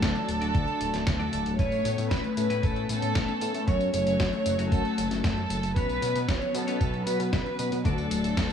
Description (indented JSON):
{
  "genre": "italo disco",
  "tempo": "115 BPM",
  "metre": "4/4",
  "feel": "straight",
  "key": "A major",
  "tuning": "A4 = 440 Hz",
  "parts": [
    { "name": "warm chamber violin section", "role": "melody", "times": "0.0-8.5 s", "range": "A4 to C#5", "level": "-30 LUFS", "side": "right 2 dB", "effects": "digital delay" },
    { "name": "warm analog pad", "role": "sustained chords", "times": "0.0-8.5 s", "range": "F#3 to D4", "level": "-32 LUFS", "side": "left 1 dB", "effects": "chorus" },
    { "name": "clean electric guitar", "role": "stabs", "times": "0.0-8.5 s", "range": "A3 to E5", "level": "-34 LUFS", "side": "left 6 dB", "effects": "low-pass filter" },
    { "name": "fat analog bass", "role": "bass", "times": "0.0-8.5 s", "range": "D1 to B2", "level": "-31 LUFS", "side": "equal", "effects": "none" },
    { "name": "dusty soul sampler-style drum kit", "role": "drums", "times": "0.0-8.5 s", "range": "hi-hat, snare drum, tambourine", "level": "-34 LUFS", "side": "left 1 dB", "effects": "small room ambience, gated reverb" },
    { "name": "electronic kick drum", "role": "drums", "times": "0.0-8.5 s", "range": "none", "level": "-27 LUFS", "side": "equal", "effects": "small room ambience" }
  ],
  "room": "light reverb",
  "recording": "none",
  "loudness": "-24 LUFS",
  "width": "side -8 dB against mid",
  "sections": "0.0-8.5 A section",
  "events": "none",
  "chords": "0.0 D; 1.6 Aadd9; 3.7 F#m; 5.8 Bsus2; 7.8 D"
}